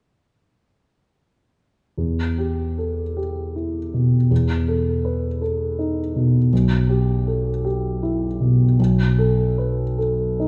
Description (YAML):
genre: classical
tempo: 79 BPM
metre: 3/4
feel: uneven beats, rubato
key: E minor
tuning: A4 = 440 Hz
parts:
  - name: dark concert grand piano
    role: accompaniment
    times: 2.0-10.5 s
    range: B1 to B4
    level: -21 LUFS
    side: equal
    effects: none
room: wet recital hall reverb, RT60 1.7 s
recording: nothing above 10.3 kHz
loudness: -21 LUFS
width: mono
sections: 2.0-10.5 A section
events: none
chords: 2.0 Em; 4.3 B7/E; 6.5 Em/B; 8.8 B7(no3)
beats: | 1.97 2.77 3.55 | 4.31 5.05 5.78 | 6.52 7.27 8.02 | 8.78 9.57 10.39